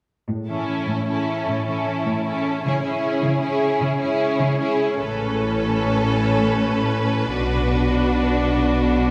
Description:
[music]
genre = cinematic, heroic adventure film score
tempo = 102 BPM (dotted quarters)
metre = 12/8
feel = straight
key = A major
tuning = A4 = 441 Hz
[part]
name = concert harp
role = arpeggios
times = 0.3-7.4 s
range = A2 to A4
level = -30 LUFS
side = equal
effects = none
[part]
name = warm symphonic cello section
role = bass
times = 0.3-9.1 s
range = A2 to C#3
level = -27 LUFS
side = equal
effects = none
[part]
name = clear studio violin section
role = melody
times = 0.5-9.1 s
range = G#4 to B4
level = -32 LUFS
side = equal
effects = none
[part]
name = rich symphonic violin section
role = second line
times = 0.5-9.1 s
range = E4 to A4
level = -29 LUFS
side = equal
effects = none
[part]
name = rich symphonic viola section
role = accompaniment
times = 0.5-9.1 s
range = C#4 to D4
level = -27 LUFS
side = equal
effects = none
[part]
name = rich symphonic double bass section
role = bass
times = 5.0-9.1 s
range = A1 to B1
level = -27 LUFS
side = equal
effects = none
[sound]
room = wet concert hall reverb, RT60 2.0 s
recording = recorded in a church or concert hall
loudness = -21 LUFS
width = mono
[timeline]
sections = 0.3-5.0 A section; 5.0-9.1 B section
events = build-up 5.0-9.1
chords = 0.3 A; 2.6 C#m; 5.0 Aadd9; 7.4 Bm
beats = | 0.29 0.88 1.48 2.06 | 2.65 3.23 3.81 4.40 | 5.00 5.59 6.18 6.77 | 7.35 7.94 8.53

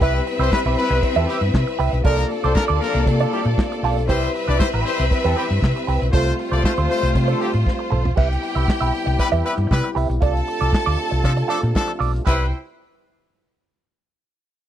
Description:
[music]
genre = disco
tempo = 118 BPM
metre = 4/4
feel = straight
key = C major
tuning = A4 = 439 Hz
[part]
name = clear studio string section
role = second line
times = 0.0-12.5 s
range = A3 to A5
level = -25 LUFS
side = equal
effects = none
[part]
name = direct-recorded clean electric guitar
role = accompaniment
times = 0.0-12.4 s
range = C4 to E5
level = -25 LUFS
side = right 10 dB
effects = wah
[part]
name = mellow French horn section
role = sustained chords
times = 0.0-12.5 s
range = C3 to B4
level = -27 LUFS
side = left 3 dB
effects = stereo widening
[part]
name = clear horn section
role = stabs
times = 0.0-12.4 s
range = D3 to D5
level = -25 LUFS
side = left 3 dB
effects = none
[part]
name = hollow-body short-scale fingered electric bass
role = bass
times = 0.0-12.5 s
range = A1 to C3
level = -20 LUFS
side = equal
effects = none
[part]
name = warm soul drum kit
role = drums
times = 0.0-12.4 s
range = crash cymbal, handclaps, hi-hat, kick drum, ride cymbal, snare drum, toms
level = -20 LUFS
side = equal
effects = none
[sound]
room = small room ambience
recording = dry, close 1970s-style studio recording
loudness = -17 LUFS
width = side -11 dB against mid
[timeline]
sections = 0.0-8.2 A section; 8.2-12.3 B section; 12.3-14.3 C section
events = drum fill 7.7-8.2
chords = 0.0 Cmaj7; 2.0 Bbmaj7/C; 4.1 Am9 (rootless); 6.1 G9sus4/C; 8.2 Cmaj7; 10.2 Bbmaj7/C (rootless); 12.3 Cmaj7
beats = | 0.01 0.52 1.03 1.54 | 2.05 2.56 3.07 3.58 | 4.09 4.60 5.11 5.62 | 6.13 6.64 7.15 7.66 | 8.17 8.68 9.19 9.70 | 10.21 10.72 11.23 11.75 | 12.26

